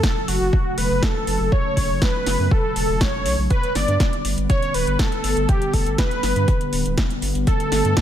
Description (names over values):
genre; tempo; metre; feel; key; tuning
progressive house; 121 BPM; 4/4; straight; unclear; A4 = 440 Hz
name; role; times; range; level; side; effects
wide unison lead; melody; 0.0-8.0 s; F#4 to D5; -23 LUFS; equal; sidechain pumping, ping-pong delay
airy breathy pad; sustained chords; 0.0-8.0 s; C#3 to B3; -27 LUFS; left 1 dB; chorus, sidechain pumping
deep house drum kit; drums; 0.0-8.0 s; hi-hat, snare drum; -27 LUFS; equal; overdrive, sidechain pumping on hats
electronic kick drum; drums; 0.0-8.0 s; none; -20 LUFS; equal; overdrive
round analog bass; bass; 0.3-7.9 s; D1 to G2; -23 LUFS; equal; sidechain pumping
room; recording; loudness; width
digital ambience; none; -18 LUFS; side -10 dB against mid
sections
0.0-8.0 A section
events
filter sweep on analog synth pad 0.0-8.0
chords
0.0 F#m; 3.5 G